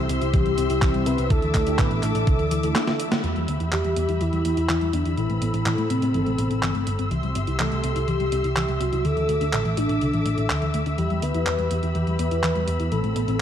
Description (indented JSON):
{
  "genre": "italo disco",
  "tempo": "124 BPM",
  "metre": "4/4",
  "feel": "straight",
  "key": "E minor",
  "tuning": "A4 = 439 Hz",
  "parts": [
    { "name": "soft octave-layered synth lead", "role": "melody", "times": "0.0-13.4 s", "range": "C4 to B4", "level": "-27 LUFS", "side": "equal", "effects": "chorus, phaser, cassette tape, tape echo" },
    { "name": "dark studio string section", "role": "sustained chords", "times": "0.0-13.4 s", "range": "C4 to E6", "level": "-30 LUFS", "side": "left 3 dB", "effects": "none" },
    { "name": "soft round pluck", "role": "arpeggios", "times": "0.0-13.4 s", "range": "D3 to A4", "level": "-30 LUFS", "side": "left 3 dB", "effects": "lush chorus, tape echo" },
    { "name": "mellow synth brass", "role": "stabs", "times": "0.0-13.4 s", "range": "A3 to C5", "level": "-34 LUFS", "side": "right 4 dB", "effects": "chorus, tremolo" },
    { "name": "hollow-body short-scale picked electric bass", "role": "bass", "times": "0.0-13.4 s", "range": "G1 to A2", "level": "-25 LUFS", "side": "equal", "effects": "none" },
    { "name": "clean 12-bit digital drum machine", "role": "drums", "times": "0.1-13.4 s", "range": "cabasa, handclaps, hi-hat, snare drum", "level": "-29 LUFS", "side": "right 1 dB", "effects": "small room ambience" },
    { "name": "electronic kick drum", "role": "drums", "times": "0.3-2.4 s", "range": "none", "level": "-21 LUFS", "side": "equal", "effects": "small room ambience" }
  ],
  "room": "light reverb",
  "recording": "dark, warm production",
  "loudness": "-20 LUFS",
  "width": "side -9 dB against mid",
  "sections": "0.0-3.2 A section; 3.2-13.4 B section",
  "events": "drum fill 2.8-3.2; band accent 3.1",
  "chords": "0.0 C; 1.3 Dsus2; 3.2 Em; 5.2 Amadd9; 7.1 C; 9.0 Dsus2; 11.0 Em",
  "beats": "0.34 0.82 | 1.30 1.79 2.27 2.76 | 3.24 3.72 4.21 4.69 | 5.18 5.66 6.14 6.63 | 7.11 7.59 8.08 8.56 | 9.05 9.53 10.01 10.50 | 10.98 11.47 11.95 12.43 | 12.92 13.40"
}